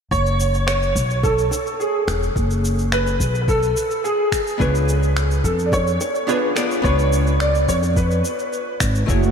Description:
sunset chillout; 107 BPM; 4/4; straight; F# minor; A4 = 440 Hz
warm grand piano; melody; 0.1-8.8 s; G#4 to D5; -21 LUFS; right 1 dB; ensemble chorus, diffuse ambient delay
upright bass; bass; 0.1-9.3 s; E1 to E#2; -20 LUFS; equal
electronic kick drum; drums; 0.1-9.2 s; -23 LUFS; equal
electronic shaker and finger snaps; drums; 0.1-9.3 s; -29 LUFS; equal
bongos; percussion; 1.2-2.2, 5.7-7.9 s; -36 LUFS; right 1 dB
archtop guitar, miked and amplified; accompaniment; 4.6-9.3 s; A3 to D5; -25 LUFS; moving between left 4 dB and right 3 dB; auto-pan, diffuse ambient delay
airy breathy pad; sustained chords; 9.1-9.3 s; A3 to F#4; -20 LUFS; right 9 dB; chorus
moderate cathedral reverb, RT60 6.3 s; dreamy mix soaked in reverb; -17 LUFS; side -7 dB against mid
0.1-9.3 A section
0.1 F#madd9; 4.6 C#7b9

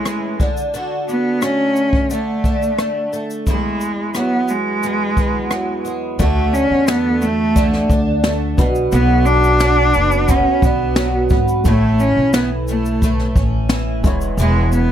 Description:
acoustic pop; 88 BPM; 4/4; straight; A4 = 440 Hz
clear cello; melody; 0.0-14.9 s; G#3 to D4; -18 LUFS; equal
picked twelve-string acoustic guitar; accompaniment; 0.0-14.9 s; E2 to F#4; -20 LUFS; right 2 dB; double-tracked left and right
jazz brush drum kit; drums; 0.1-14.9 s; kick drum, rim click, shaker, snare drum; -19 LUFS; equal
dark baby grand piano; accompaniment; 6.2-14.9 s; G#3 to F#5; -29 LUFS; left 2 dB
upright bass; bass; 6.2-14.9 s; E1 to E2; -19 LUFS; equal
light reverb; -14 LUFS; side -10 dB against mid
0.0-6.2 A section; 6.2-14.9 B section
0.4 D; 3.5 Eadd9; 6.2 D; 8.6 Bm; 11.6 A; 14.0 E6

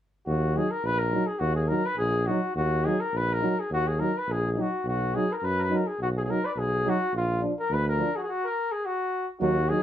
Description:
balkan folk, Balkan brass band; 105 BPM; 2/4; straight; Eb harmonic minor; A4 = 440 Hz
warm flugelhorn; melody; 0.3-9.8 s; F4 to D5; -27 LUFS; left 2 dB
clear tuba; bass; 0.3-9.7 s; Bb1 to F#2; -28 LUFS; right 1 dB
warm euphonium; accompaniment; 0.6-9.8 s; D4 to Eb4; -32 LUFS; left 4 dB
warm euphonium; accompaniment; 0.6-9.8 s; F3 to Gb3; -30 LUFS; right 4 dB
moderate studio reverb, RT60 0.6 s; dark, warm production, faint mains hum; -24 LUFS; side -11 dB against mid
0.3-9.4 A section
stop 8.3-9.4
0.3 Ebm; 4.8 B; 7.1 Bb; 8.3 N.C.

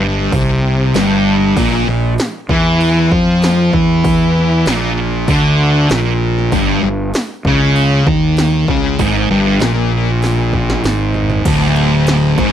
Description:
stoner and doom metal; 97 BPM; 4/4; straight; A4 = 440 Hz
thick fuzz guitar; riff; 0.0-12.5 s; D2 to F3; -12 LUFS; equal; distortion
fuzz fingered electric bass; bass; 0.0-12.5 s; D1 to F2; -19 LUFS; equal; overdrive
80s electronic pad drums; drums; 0.3-12.5 s; crash cymbal, hi-hat, kick drum, ride cymbal, snare drum, toms; -20 LUFS; equal; gated reverb on snare and toms
little or no reverb; dry, close 1970s-style studio recording; -11 LUFS; side -10 dB against mid
0.0-11.5 A section; 11.5-12.5 B section
drum fill 10.2-11.5
0.0 N.C.; 1.6 Bb5; 6.5 Gdim; 11.5 N.C.

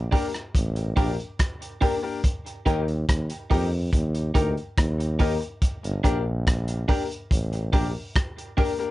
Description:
roots reggae; 71 BPM; 4/4; straight; G minor; A4 = 440 Hz
warm tuba; bass; 0.0-7.9 s; G1 to F2; -26 LUFS; equal
clean electric guitar; accompaniment; 0.1-8.8 s; D4 to Bb4; -31 LUFS; right 4 dB; dub echo
warm upright piano; stabs; 0.1-8.9 s; Bb3 to Bb4; -29 LUFS; left 6 dB
crunchy breakbeat drum kit; drums; 0.1-8.9 s; hi-hat, kick drum, rim click; -24 LUFS; equal
little or no reverb; nothing above 10.7 kHz; -22 LUFS; side -17 dB against mid
0.0-8.9 A section
0.0 Gm; 2.2 Eb; 5.6 Gm

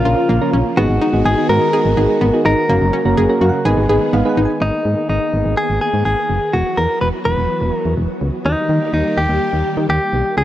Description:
pop; 125 BPM; 4/4; straight; G# dorian, G# minor from 4.6 s; A4 = 440 Hz
direct-recorded clean electric guitar; melody; 0.0-10.4 s; D#4 to B4; -18 LUFS; equal
string machine, violas; sustained chords; 0.0-10.4 s; C#3 to G#4; -23 LUFS; equal; ensemble chorus
solid FM bass; bass; 0.0-10.4 s; E1 to D#3; -18 LUFS; equal
soft electric-piano-like synth keys; accompaniment; 0.1-4.6 s; A#3 to G#5; -18 LUFS; right 2 dB; chorus
analog pluck; arpeggios; 0.1-4.5 s; A#3 to G#4; -21 LUFS; left 1 dB; chorus, tape echo
digital ambience; dry, gritty hardware recording, transformer saturation; -14 LUFS; side -13 dB against mid
0.0-4.6 A section; 4.6-10.4 B section
synth keys fill 3.2-4.6
0.0 A#m; 0.8 G#m7; 2.7 F#; 3.7 G#m; 4.6 G#madd9; 6.5 Esus2; 8.5 D#

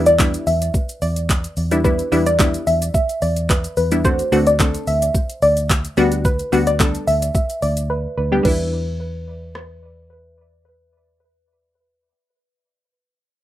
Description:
dance-pop; 109 BPM; 4/4; straight; E minor; A4 = 440 Hz
wavetable chord stab; accompaniment; 0.0-12.1 s; G3 to A4; -20 LUFS; left 1 dB; sidechain pumping
vintage muted fingered electric bass; bass; 0.0-12.1 s; D2 to E2; -22 LUFS; equal; sidechain pumping
soft round pluck; melody; 0.1-10.1 s; B4 to E5; -20 LUFS; equal; chorus, sidechain pumping, tape echo
pop drum kit; drums; 0.1-9.7 s; crash cymbal, handclaps, hi-hat, kick drum, rim click, shaker; -20 LUFS; equal; overdrive
light reverb; rough home demo mix; -16 LUFS; side -13 dB against mid
0.0-8.5 A section; 8.5-10.7 B section
drop 0.0-8.5; silent gap 7.9-8.5
0.0 Em7; 4.0 D7; 6.0 Gmaj7/D; 8.5 Em7

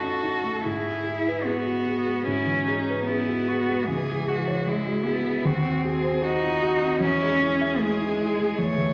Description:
classical, slow romantic movement for piano trio; 76 BPM; 4/4; rubato; E major; A4 = 440 Hz
warm violin; melody; 0.0-8.9 s; D#4 to C#5; -34 LUFS; equal
rich cello; second line; 0.0-8.9 s; E3 to F#4; -28 LUFS; equal
dark baby grand piano; accompaniment; 0.0-8.9 s; C#2 to E5; -29 LUFS; equal
wet concert hall reverb, RT60 1.8 s; -25 LUFS; mono
0.0-8.9 A section
0.0 D#dim/F#; 0.7 E/G#; 3.9 C#m; 5.4 Cdim/Eb; 7.0 C#m/E

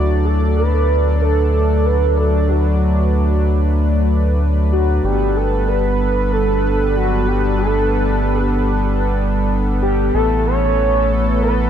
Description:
synthwave; 94 BPM; 4/4; straight; A4 = 440 Hz
expressive portamento lead; melody; 0.0-11.7 s; F#4 to C#5; -20 LUFS; right 1 dB; lush chorus, digital delay
chorused pulse-width pad; sustained chords; 0.0-11.7 s; E3 to D5; -20 LUFS; equal
round analog bass; bass; 0.0-11.7 s; G1 to D2; -17 LUFS; equal
light reverb, digital ambience; dark, warm production; -14 LUFS; side -9 dB against mid
0.0-11.7 A section
0.0 D; 5.0 Gadd9; 10.1 Asus2

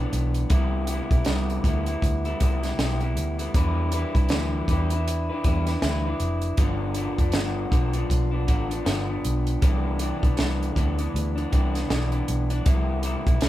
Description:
indie pop, bedroom pop; 79 BPM; 4/4; swing 60% on 16ths; C major; A4 = 440 Hz
electric guitar through a small old amp; accompaniment; 0.0-13.5 s; G2 to B4; -28 LUFS; left 1 dB; warbly pitch drift
vintage muted fingered electric bass; bass; 0.0-13.5 s; F1 to E2; -26 LUFS; equal
compact cocktail drum kit; drums; 0.1-13.5 s; hi-hat, kick drum, snare drum; -24 LUFS; equal
light reverb; band playing live in one room; -22 LUFS; side -14 dB against mid
0.0-13.5 A section
0.0 Cmaj9 (rootless); 0.5 Cmaj9/B; 3.5 Em7; 6.6 G7; 9.6 Cmaj9; 12.7 Cmaj7

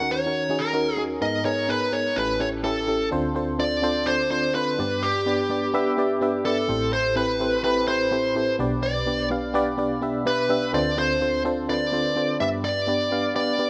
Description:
pop; 126 BPM; 4/4; swing 55% on 16ths; D dorian from 3.1 s; A4 = 442 Hz
dark smooth lead guitar; melody; 0.0-13.7 s; G4 to F#5; -26 LUFS; equal; overdrive
FM electric piano with tremolo; accompaniment; 0.0-13.7 s; A1 to F5; -27 LUFS; equal
light reverb; -24 LUFS; mono
0.0-3.1 A section; 3.1-13.7 B section
lead electric guitar solo 0.0-3.1
0.0 D#m7; 1.2 G#madd9; 2.2 A7; 3.1 Dm7; 4.8 G; 6.7 Am7; 8.6 G/B; 10.7 Dm7; 12.4 G

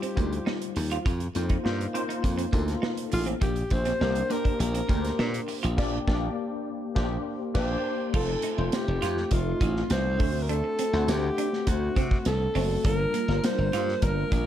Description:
polished 1980s jazz-funk pop; 102 BPM; 4/4; straight; A4 = 440 Hz
breathy alto saxophone; melody; 0.0-14.5 s; F4 to C5; -30 LUFS; equal
mellow tine electric piano; accompaniment; 0.0-14.5 s; G3 to F#5; -31 LUFS; left 4 dB; overdrive, fast stereo tremolo, ensemble chorus
clean electric guitar; riff; 0.0-14.4 s; G3 to F4; -35 LUFS; right 6 dB; ensemble chorus
modern studio drum kit; drums; 0.0-14.5 s; crash cymbal, hi-hat, kick drum, snare drum; -30 LUFS; equal
glassy slap bass; bass; 0.2-14.5 s; F1 to C3; -28 LUFS; equal
studio reverb; dark, warm production; -24 LUFS; side -11 dB against mid
0.0-8.1 A section; 8.1-14.5 B section
band accent 5.8-8.1
0.0 Eb69; 1.1 F7sus4; 3.4 Bb69; 8.1 F7; 10.2 D7; 12.8 Gm7

